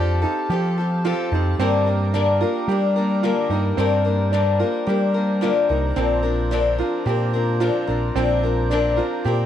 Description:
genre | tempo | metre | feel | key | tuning
indie folk with a building arrangement | 110 BPM | 4/4 | straight | G minor | A4 = 439 Hz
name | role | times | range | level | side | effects
picked acoustic archtop guitar | accompaniment | 0.0-9.5 s | G2 to Bb4 | -22 LUFS | left 6 dB | none
hand-pumped harmonium | sustained chords | 0.0-9.5 s | F4 to Bb5 | -30 LUFS | right 5 dB | none
warm upright piano | arpeggios | 0.0-9.5 s | C4 to G4 | -26 LUFS | right 10 dB | none
picked electric bass | bass | 0.0-9.5 s | Bb1 to G3 | -22 LUFS | equal | none
room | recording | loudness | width
studio ambience | dry, close 1970s-style studio recording | -18 LUFS | side -10 dB against mid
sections
0.0-9.5 A section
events
none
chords
0.0 Fadd9; 1.6 Gm; 6.0 Bbadd9

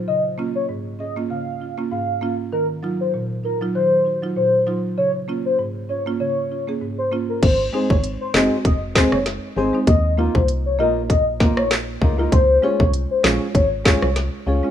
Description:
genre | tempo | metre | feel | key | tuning
dancehall | 98 BPM | 4/4 | swing 56% on 16ths | unclear | A4 = 440 Hz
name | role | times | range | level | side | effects
warm velvety synth lead | melody | 0.1-14.1 s | Bb4 to F5 | -22 LUFS | left 2 dB | chorus, tape echo
buzzing marimba with medium mallets | accompaniment | 0.1-14.7 s | Ab2 to Ab4 | -26 LUFS | right 3 dB | sidechain pumping
organ-like FM bass | bass | 7.4-14.6 s | F1 to Eb2 | -22 LUFS | equal | none
island pop drum kit | drums | 7.4-14.3 s | crash cymbal, handclaps, hi-hat, kick drum, rim click, snare drum | -18 LUFS | equal | none
flamenco guitar | arpeggios | 7.7-14.7 s | Bb3 to Db5 | -23 LUFS | left 3 dB | none
room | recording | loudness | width
studio ambience | rough home demo mix, small room ambience | -17 LUFS | side -10 dB against mid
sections
0.0-7.4 A section; 7.4-14.7 B section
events
none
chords
0.1 Db6; 2.5 Ebmadd9; 5.0 Db6; 7.4 Ab; 9.9 Ebsus2; 12.3 Db

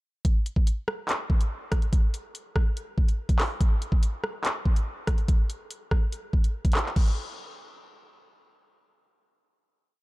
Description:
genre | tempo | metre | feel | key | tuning
hip hop | 143 BPM | 4/4 | half-time | none | none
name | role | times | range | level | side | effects
drill drum kit | drums | 0.2-7.1 s | crash cymbal, handclaps, hi-hat, kick drum, rim click | -24 LUFS | equal | none
room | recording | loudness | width
little or no reverb | dark, warm production | -24 LUFS | side -21 dB against mid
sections
0.2-7.0 hook; 7.0-10.0 final hit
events
none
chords
none

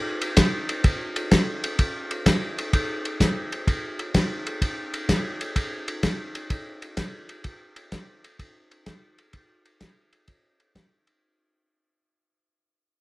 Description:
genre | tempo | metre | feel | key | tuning
jazz | 127 BPM | 4/4 | swing 68% on 8ths | none | none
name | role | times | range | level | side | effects
warm soul drum kit | drums | 0.2-11.1 s | hi-hat, kick drum, ride cymbal, snare drum | -23 LUFS | equal | none
room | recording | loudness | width
moderate studio reverb, RT60 0.6 s | dark, warm production | -23 LUFS | side -21 dB against mid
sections
0.0-11.2 A section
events
fade-out 0.0-11.2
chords
none

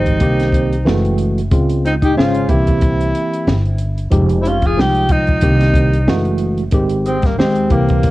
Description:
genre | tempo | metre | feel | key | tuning
hip hop, jazz-hop | 92 BPM | 4/4 | swing 57% on 16ths | unclear | A4 = 438 Hz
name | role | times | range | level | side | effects
breathy tenor saxophone | melody | 0.0-8.1 s | Bb3 to Ab4 | -20 LUFS | equal | cassette tape
mellow electric guitar | second line | 0.0-8.1 s | G3 to F4 | -23 LUFS | left 3 dB | phaser, cassette tape
tine electric piano | accompaniment | 0.0-8.1 s | Db3 to C5 | -18 LUFS | right 1 dB | medium stereo tremolo, cassette tape
upright bass | bass | 0.0-8.1 s | F1 to Eb2 | -17 LUFS | equal | none
compact cocktail drum kit | drums | 0.1-8.1 s | hi-hat, kick drum, snare drum | -17 LUFS | equal | cassette tape
room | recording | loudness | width
small room reverb | home recording on cassette | -12 LUFS | side -18 dB against mid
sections
0.0-8.1 A section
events
none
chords
0.2 Cm7; 0.9 Gbm9; 1.5 Dbmaj7; 2.5 C7; 4.1 Fm9; 5.4 Cm7; 6.1 Gbm9; 6.7 Abmaj7

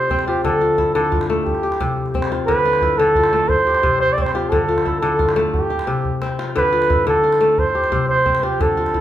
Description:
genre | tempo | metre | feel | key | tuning
west african traditional, West African string and xylophone music | 118 BPM (dotted quarters) | 12/8 | straight | unclear | A4 = 440 Hz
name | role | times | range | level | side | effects
mellow flugelhorn | melody | 0.0-9.0 s | G4 to D5 | -18 LUFS | right 1 dB | none
kora | arpeggios | 0.0-9.0 s | C3 to G4 | -20 LUFS | left 2 dB | none
calabash | percussion | 0.0-9.0 s | none | -25 LUFS | right 1 dB | none
room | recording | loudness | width
wet large studio reverb, RT60 1.1 s | band playing live in one room | -15 LUFS | side -12 dB against mid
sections
0.0-9.0 A section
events
drum fill 5.9-6.6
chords
0.4 Dm; 1.5 C5; 2.5 Dm; 3.5 C5; 4.5 Dm; 5.5 C5; 6.6 Dm; 7.6 C5

